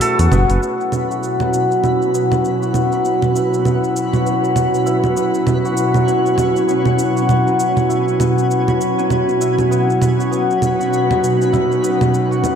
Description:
organic downtempo; 99 BPM; 4/4; swing 59% on 16ths; A4 = 440 Hz
airy breathy pad; sustained chords; 0.0-12.6 s; B2 to G#4; -20 LUFS; right 2 dB; chorus, vintage 12-bit sampler grit
santur; arpeggios; 0.0-12.6 s; F#3 to B4; -17 LUFS; left 2 dB; low-pass filter, ping-pong delay
electronic hi-hat, cabasa and congas; drums; 0.0-12.6 s; -20 LUFS; right 3 dB
smooth synth bass; bass; 0.2-0.6 s; F#1 to E2; -14 LUFS; equal
twinkling granular texture; texture; 1.0-12.6 s; B3 to B4; -28 LUFS; equal; built-in reverb
wet echo chamber reverb, RT60 2.0 s, digital ambience; dark, warm production; -14 LUFS; side -7 dB against mid
0.6-12.6 A section
filter sweep on santur 0.6-12.6
0.0 B7sus4
0.01 | 0.62 1.23 1.83 2.44 | 3.04 3.65 4.26 4.86 | 5.47 6.07 6.68 7.29 | 7.89 8.50 9.10 9.71 | 10.32 10.92 11.53 12.13

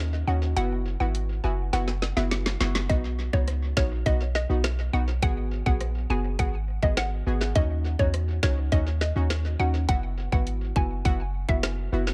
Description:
dancehall; 103 BPM; 4/4; straight; A4 = 440 Hz
synth brass stab; accompaniment; 0.0-12.1 s; B3 to G#4; -35 LUFS; equal; chorus
clean 808-style bass; bass; 0.0-12.1 s; F#1 to E2; -29 LUFS; equal
hollow square pluck; melody; 0.3-11.6 s; C#5 to G#5; -34 LUFS; equal; chorus, tape echo
island pop drum kit; drums; 0.6-12.1 s; hi-hat, kick drum, rim click, snare drum; -29 LUFS; equal; tape echo
little or no reverb; echo-heavy mix; -26 LUFS; mono
0.0-12.1 A section
break 0.0-2.9; drum fill 1.7-2.9
0.0 D#m7; 0.6 F#7sus4; 2.9 B; 5.2 G#m7; 7.6 D#m7; 9.9 F#7sus4
| 0.56 1.15 1.73 2.31 | 2.90 3.48 4.06 4.64 | 5.22 5.81 6.39 6.97 | 7.55 8.14 8.72 9.30 | 9.89 10.47 11.05 11.63

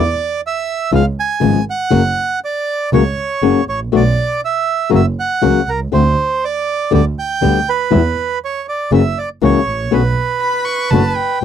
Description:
tango; 120 BPM; 4/4; rubato; B minor; A4 = 440 Hz
bandoneon; melody; 0.0-11.4 s; A#4 to G#5; -18 LUFS; right 5 dB
rich double bass; bass; 0.0-11.4 s; F#1 to E2; -16 LUFS; right 2 dB
flamenco guitar; accompaniment; 0.9-11.4 s; B2 to G4; -14 LUFS; left 9 dB
warm violin; second line; 10.4-11.4 s; G5 to C#6; -19 LUFS; left 6 dB
little or no reverb; dry, close 1970s-style studio recording; -13 LUFS; side -9 dB against mid
0.0-11.4 A section
0.0 E7(no3); 0.9 C#7; 1.9 F#; 3.9 Bm; 4.9 F#; 5.9 D7; 6.9 G/D; 7.9 E5; 8.9 F#7; 9.9 Bm
0.42 0.92 1.42 | 1.92 2.42 2.92 3.42 | 3.92 4.42 4.92 5.42 | 5.92 6.42 6.92 7.42 | 7.92 8.41 8.91 9.41 | 9.91 10.41 10.91 11.42

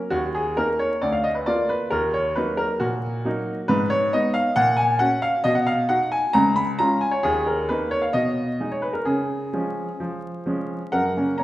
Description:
classical-period piano sonatina; 134 BPM; 4/4; rubato; A4 = 439 Hz
bright baby grand piano; solo; 0.0-11.4 s; C#2 to B5; -20 LUFS; equal
wet recital hall reverb, RT60 1.4 s; heard from further back in the room, vinyl crackle; -20 LUFS; side -15 dB against mid
0.0-10.9 A section
0.1 D#5; 1.0 A#/D; 1.9 D#m; 3.7 G#m; 4.6 F#/A#; 5.4 B; 6.3 C#; 7.2 D#5; 8.1 G#m/B; 9.1 C#; 10.9 F#
| 0.13 0.58 1.02 1.47 | 1.92 2.36 2.80 3.25 | 3.69 4.13 4.57 5.01 | 5.45 5.89 6.34 6.79 | 7.24 7.69 8.14 8.60 | 9.06 9.54 10.00 10.47 | 10.93 11.39

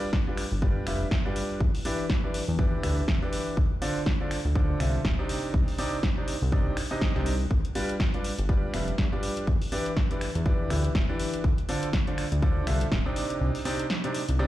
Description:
piano house; 122 BPM; 4/4; swing 57% on 16ths; G mixolydian; A4 = 441 Hz
clear baby grand piano; riff; 0.0-14.5 s; C3 to E5; -31 LUFS; equal; sidechain pumping, digital delay
electronic kick drum; drums; 0.1-13.0 s; -26 LUFS; equal
punchy analog drum machine; drums; 0.1-14.4 s; finger snaps, hi-hat, snare drum; -34 LUFS; equal
fat analog bass; bass; 0.5-14.5 s; D1 to G2; -27 LUFS; equal; sidechain pumping
digital ambience; played on a big sound system in a bare room, large studio reverb; -24 LUFS; side -14 dB against mid
0.0-14.5 A section
kick drops out 13.4-14.5
0.0 G7; 1.6 Em7; 3.6 Dm7; 5.3 Cmadd9; 7.5 G7; 9.5 Em7; 11.4 Dm7; 13.2 Cmadd9
0.13 0.62 1.11 | 1.61 2.10 2.59 3.08 | 3.57 4.07 4.56 5.05 | 5.54 6.03 6.52 7.02 | 7.51 8.00 8.49 8.98 | 9.47 9.97 10.46 10.95 | 11.44 11.93 12.43 12.92 | 13.41 13.90 14.39

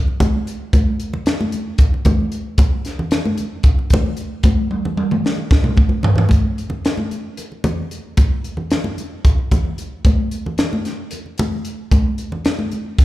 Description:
jazz; 225 BPM (eighths); 7/8; straight
congas; percussion; 0.1-13.0 s; -22 LUFS; equal; slapback echo
crisp fusion drum kit; drums; 0.2-13.0 s; hi-hat, kick drum, snare drum, toms; -16 LUFS; equal
light reverb, small room reverb; live gig heard through the venue's PA, club reverb; -16 LUFS; side -16 dB against mid
0.0-6.3 A section; 6.3-13.0 B section
drum fill 4.7-6.3
0.20 0.47 | 0.73 1.00 1.26 1.53 1.79 2.06 2.32 | 2.59 2.85 3.12 3.38 3.65 3.92 4.18 | 4.45 4.71 4.98 5.24 5.51 5.78 6.04 | 6.31 6.58 6.84 7.11 7.38 7.64 7.91 | 8.18 8.44 8.71 8.98 9.24 9.51 9.78 | 10.05 10.31 10.58 10.85 11.12 11.38 11.65 | 11.92 12.19 12.45 12.72 12.99

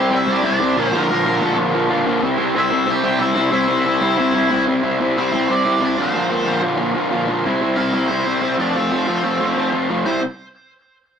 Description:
punk; 184 BPM; 4/4; straight; C mixolydian; A4 = 440 Hz
nasal lead guitar with a parked wah; melody; 0.0-10.2 s; Bb3 to Bb5; -22 LUFS; equal; overdrive, tape echo
raw garage guitar; riff; 0.0-10.2 s; Bb2 to F4; -17 LUFS; equal; overdrive
moderate studio reverb, RT60 0.6 s; rough rehearsal-room recording, tube saturation; -16 LUFS; side -7 dB against mid
0.0-4.8 A section; 4.8-10.1 B section; 10.1-11.2 C section
0.0 C; 0.8 Bb; 2.2 C; 6.0 Bb; 7.4 C; 8.6 F; 10.1 C
0.28 0.61 | 0.93 1.26 1.58 1.91 | 2.23 2.56 2.88 3.21 | 3.53 3.85 4.18 4.51 | 4.83 5.16 5.48 5.81 | 6.13 6.46 6.79 7.11 | 7.44 7.77 8.09 8.42 | 8.75 9.07 9.40 9.73 | 10.05

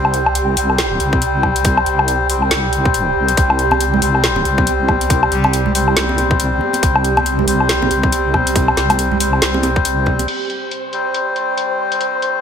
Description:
deep dubstep; 139 BPM; 4/4; swing 59% on 16ths, half-time; A4 = 440 Hz
melodica; stabs; 0.0-12.4 s; G3 to C5; -18 LUFS; left 5 dB; dub echo
deep soft wobble bass; bass; 0.0-10.3 s; C2; -19 LUFS; equal; chorus
garage drum kit; drums; 0.0-12.3 s; crash cymbal, hi-hat, snare drum, woodblock; -19 LUFS; left 1 dB; low-pass filter on hats, low-pass filter on perc, low-pass filter on snare, low-pass filter on cymbals
wind-like tuned noise texture; texture; 0.0-12.4 s; G4 to C5; -23 LUFS; right 5 dB; built-in reverb
electronic kick drum; drums; 1.1-10.2 s; -16 LUFS; equal
deep dark ambient pad; sustained chords; 5.3-12.4 s; C4 to D5; -27 LUFS; right 3 dB; chorus, built-in reverb
congas; percussion; 3.7-10.3 s; -24 LUFS; right 4 dB; dub echo
rich cello; melody; 5.3-5.7 s; G3; -29 LUFS; equal
moderate echo chamber reverb, RT60 1.4 s, digital ambience; -13 LUFS; side -7 dB against mid
0.0-10.3 A section; 10.3-12.4 B section
filter sweep on ambient pad 10.3-12.4
0.0 C5
0.35 0.79 1.22 | 1.65 2.08 2.51 2.94 | 3.38 3.81 4.24 4.67 | 5.10 5.53 5.96 6.40 | 6.83 7.26 7.69 8.12 | 8.55 8.99 9.42 9.85 | 10.28 10.71 11.14 11.58 | 12.01

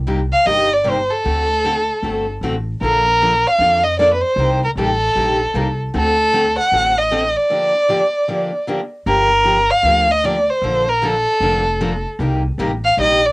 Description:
acoustic string swing (jazz manouche); 154 BPM; 4/4; swing 63% on 8ths; G minor; A4 = 440 Hz
upright bass; bass; 0.0-13.3 s; F1 to F2; -23 LUFS; equal
picked steel-string acoustic guitar; accompaniment; 0.1-13.2 s; C3 to A4; -22 LUFS; left 1 dB; cassette tape
warm violin; melody; 0.3-13.3 s; A4 to F#5; -15 LUFS; equal
moderate booth ambience, RT60 0.2 s; home recording on cassette; -14 LUFS; side -24 dB against mid
0.0-9.1 A section; 9.1-13.3 A section
break 7.5-9.1
0.0 Cm7; 1.3 D7; 2.8 Bbmaj7; 4.4 Cm7; 5.9 D7; 7.5 Gm7; 10.6 Bbmaj7; 12.2 Cm7
0.08 0.47 0.86 | 1.25 1.64 2.03 2.42 | 2.82 3.21 3.60 3.99 | 4.38 4.77 5.16 5.55 | 5.94 6.33 6.73 7.12 | 7.51 7.90 8.29 8.68 | 9.07 9.46 9.85 10.24 | 10.63 11.02 11.41 11.80 | 12.20 12.59 12.98

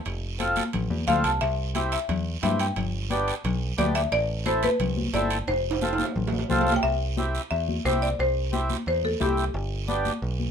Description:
latin, cumbia; 177 BPM; 4/4; straight; C major; A4 = 441 Hz
picked electric bass; bass; 0.1-10.5 s; F1 to G2; -28 LUFS; right 1 dB
congas; percussion; 0.1-10.5 s; -31 LUFS; left 4 dB
guiro; percussion; 0.1-10.5 s; -38 LUFS; right 9 dB
timbales; percussion; 0.1-6.8 s; -33 LUFS; right 6 dB
mellow accordion; accompaniment; 0.4-10.1 s; B3 to A4; -27 LUFS; equal
buzzing marimba with hard mallets; melody; 1.1-9.4 s; G4 to A5; -27 LUFS; left 2 dB
moderate studio reverb, RT60 0.5 s; minimal, uncompressed stereo recording; -23 LUFS; side -7 dB against mid
0.0-6.8 A section; 6.8-10.5 B section
drum fill 5.5-6.8
0.1 F; 1.4 C; 2.8 G; 4.1 Amadd9; 5.5 F; 6.8 C; 9.5 G
| 0.06 0.40 0.73 1.07 | 1.41 1.75 2.09 2.43 | 2.77 3.11 3.45 3.79 | 4.12 4.46 4.80 5.14 | 5.48 5.82 6.16 6.50 | 6.84 7.17 7.51 7.85 | 8.19 8.53 8.87 9.21 | 9.55 9.89 10.23

